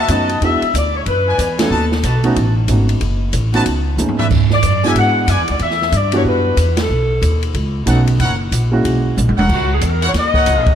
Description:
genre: jazz, big band swing.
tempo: 185 BPM.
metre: 4/4.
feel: swing 62% on 8ths.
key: B mixolydian.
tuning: A4 = 442 Hz.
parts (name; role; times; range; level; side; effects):
mellow saxophone section; melody; 0.0-2.3, 4.5-7.4, 9.5-10.8 s; F#4 to F#5; -18 LUFS; left 3 dB; none.
clear trumpet section; stabs; 0.0-5.4, 7.9-10.8 s; D#4 to A5; -23 LUFS; equal; none.
upright bass; bass; 0.0-10.8 s; E1 to G#2; -17 LUFS; equal; none.
warm baby grand piano; accompaniment; 0.1-9.2 s; G3 to G#4; -20 LUFS; right 2 dB; none.
open jazz drum kit; drums; 0.1-10.7 s; crash cymbal, hi-hat, kick drum, ride cymbal, snare drum, toms; -20 LUFS; right 2 dB; none.
room: light reverb.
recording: none.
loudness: -13 LUFS.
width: side -9 dB against mid.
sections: 0.0-10.8 A section.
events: band accent 1.6, 6.7; drum fill 4.0-4.3, 9.2-9.5.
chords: 0.4 E7; 1.7 B7; 4.3 E7; 5.6 Em7; 6.9 B7; 8.2 F#7.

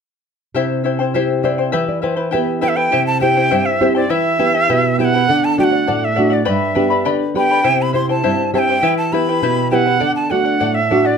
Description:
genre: andean folk, Andean ensemble.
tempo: 102 BPM.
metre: 2/4.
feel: straight.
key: unclear.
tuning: A4 = 440 Hz.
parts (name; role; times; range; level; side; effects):
charango; accompaniment; 0.5-11.2 s; E4 to B5; -19 LUFS; left 7 dB; none.
nylon-string guitar; accompaniment; 0.5-11.2 s; G2 to E5; -18 LUFS; right 3 dB; none.
breathy bright quena; melody; 2.6-11.2 s; D5 to C6; -17 LUFS; right 2 dB; none.
room: wet small room reverb, RT60 0.5 s.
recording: none.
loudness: -14 LUFS.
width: side -6 dB against mid.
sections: 0.6-2.9 A section; 2.9-11.2 B section.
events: nylon-string guitar fill 1.1-2.9.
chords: 0.6 C; 1.7 Em; 2.9 C; 4.1 Em; 5.3 D; 6.5 G; 7.6 C; 8.8 Em; 10.0 D.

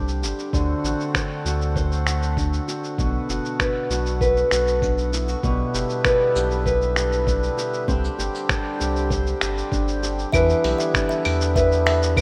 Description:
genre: folktronica.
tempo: 98 BPM.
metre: 4/4.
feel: straight.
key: E minor.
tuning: A4 = 440 Hz.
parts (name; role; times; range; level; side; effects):
hand-pumped harmonium; sustained chords; 0.0-12.2 s; D3 to G4; -31 LUFS; equal; none.
nylon-string guitar; arpeggios; 0.0-12.2 s; B2 to C5; -26 LUFS; equal; delay.
warm sub bass; bass; 0.0-12.2 s; F#1 to E2; -26 LUFS; equal; none.
lo-fi sampler-style drum kit; drums; 0.1-12.2 s; cabasa, claves, finger snaps, hi-hat; -30 LUFS; equal; studio reverb.
electronic kick drum; drums; 0.5-12.2 s; none; -28 LUFS; equal; studio reverb.
music box; second line; 10.3-12.0 s; E5; -28 LUFS; equal; delay.
room: moderate lush hall reverb, RT60 2.5 s.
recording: rough home demo mix.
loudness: -22 LUFS.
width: mono.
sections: 0.0-10.3 A section; 10.3-12.2 B section.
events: filter sweep on nylon-string guitar 0.0-10.3.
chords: 0.0 Csus2; 0.5 D7; 3.0 Bm7; 5.4 Em7; 7.9 Csus2; 10.3 Em7.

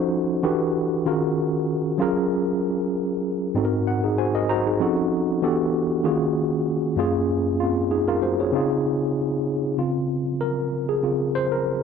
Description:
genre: soul.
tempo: 96 BPM.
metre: 4/4.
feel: swing 54% on 16ths.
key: Db major.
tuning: A4 = 439 Hz.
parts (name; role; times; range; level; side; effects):
tine electric piano; solo; 0.0-11.8 s; Gb2 to Bb5; -21 LUFS; equal; overdrive, fast stereo tremolo.
room: digital ambience.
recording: dry, close 1970s-style studio recording.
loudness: -21 LUFS.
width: side -6 dB against mid.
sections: 0.0-9.8 A section; 9.8-11.8 B section.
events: tine electric piano fill 3.6-4.8; tine electric piano solo 9.8-11.8.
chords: 0.4 Em11; 1.1 Ebm11; 2.0 Gbmaj9; 3.6 Ab7; 4.8 F7b9b13; 5.4 Em11; 6.0 Ebm11; 7.0 Gbmaj9; 8.5 Dbmaj7.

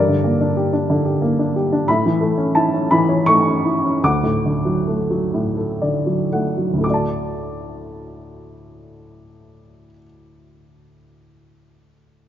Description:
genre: classical, lyrical solo piano.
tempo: 36-62 BPM (dotted quarters).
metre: 6/8.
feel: rubato.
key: D major.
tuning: A4 = 439 Hz.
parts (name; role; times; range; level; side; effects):
warm upright piano; solo; 0.0-12.3 s; D2 to D6; -16 LUFS; equal; none.
room: moderate scoring stage reverb, RT60 1.8 s.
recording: nothing above 7.5 kHz.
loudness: -16 LUFS.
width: side -10 dB against mid.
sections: 0.0-6.8 A section; 6.8-12.3 B section.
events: slowing down 1.9-6.8; upright piano fill 5.3-6.8.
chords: 0.0 Gm; 1.9 A; 4.0 D.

